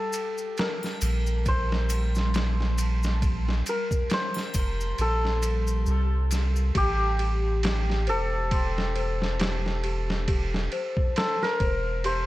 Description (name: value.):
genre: trip hop.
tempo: 68 BPM.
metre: 4/4.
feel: swing 56% on 16ths.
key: A phrygian.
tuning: A4 = 440 Hz.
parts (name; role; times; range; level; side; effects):
santur; melody; 0.0-12.3 s; G4 to C5; -30 LUFS; left 1 dB; dub echo.
backwards swelling texture; texture; 0.0-6.8 s; G3 to A5; -39 LUFS; right 1 dB; built-in reverb.
trip hop sampler-style drum kit; drums; 0.1-12.3 s; kick drum, ride cymbal, snare drum; -30 LUFS; equal; vintage 12-bit sampler grit.
maracas and triangle; percussion; 0.1-6.7 s; none; -39 LUFS; left 4 dB; none.
soft dub sub bass; bass; 1.0-12.3 s; E1 to C2; -26 LUFS; equal; none.
worn celesta; arpeggios; 6.7-12.3 s; G4 to C6; -34 LUFS; left 2 dB; tape echo.
room: studio ambience.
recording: none.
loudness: -24 LUFS.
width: side -16 dB against mid.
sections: 0.0-6.8 A section; 6.8-12.3 B section.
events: none.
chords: 0.0 Bbsus2; 6.8 Am7.